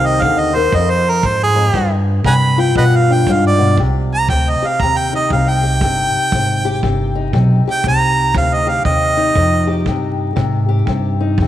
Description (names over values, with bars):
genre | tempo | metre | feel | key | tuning
acoustic country blues, solo or duo | 118 BPM | 4/4 | swing 60% on 8ths | C harmonic minor | A4 = 440 Hz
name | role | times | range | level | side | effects
clear harmonica | melody | 0.0-9.8 s | Ab4 to B5 | -16 LUFS | right 3 dB | none
fingerpicked old ladder-braced acoustic guitar | accompaniment | 0.0-11.5 s | F2 to G4 | -19 LUFS | left 5 dB | none
upright bass | bass | 0.0-11.5 s | G1 to C3 | -16 LUFS | equal | none
kick drum | drums | 0.2-11.5 s | none | -22 LUFS | right 2 dB | none
room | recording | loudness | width
light reverb, small room ambience | 1960s-style stereo, vinyl crackle | -12 LUFS | side -12 dB against mid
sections
0.0-3.8 A section; 3.8-11.5 A section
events
harmonica solo 0.0-11.5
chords
0.0 Cm; 0.7 Fm; 1.8 G7b9; 3.8 Cm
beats
0.23 0.74 1.25 | 1.75 2.26 2.77 3.27 | 3.78 4.29 4.79 5.30 | 5.81 6.32 6.83 7.33 | 7.84 8.35 8.86 9.36 | 9.87 10.38 10.89 11.39